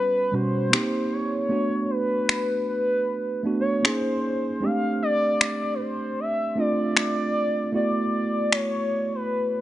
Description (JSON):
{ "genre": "contemporary R&B", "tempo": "77 BPM", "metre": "4/4", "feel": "swing 58% on 16ths", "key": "unclear", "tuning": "A4 = 443 Hz", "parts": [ { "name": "gliding portamento lead", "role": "melody", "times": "0.0-9.6 s", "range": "B4 to F5", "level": "-25 LUFS", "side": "left 1 dB", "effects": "chorus, digital delay" }, { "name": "mellow tine electric piano", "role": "accompaniment", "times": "0.0-9.6 s", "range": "B2 to G#4", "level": "-26 LUFS", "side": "right 2 dB", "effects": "none" }, { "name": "electronic finger snaps", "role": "drums", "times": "0.7-8.7 s", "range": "none", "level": "-21 LUFS", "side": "left 1 dB", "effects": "vintage 12-bit sampler grit" } ], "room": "light reverb, digital ambience", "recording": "nothing above 10.9 kHz", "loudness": "-22 LUFS", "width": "side -14 dB against mid", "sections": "0.0-9.6 A section", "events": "break 0.0-9.6", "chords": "0.0 Em69 (rootless); 0.7 A#m69; 1.5 Bm9/A; 3.8 A#m11; 4.6 F69; 7.7 D69", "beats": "0.72 | 1.50 2.28 3.06 3.84 | 4.62 5.40 6.18 6.96 | 7.73 8.51 9.29" }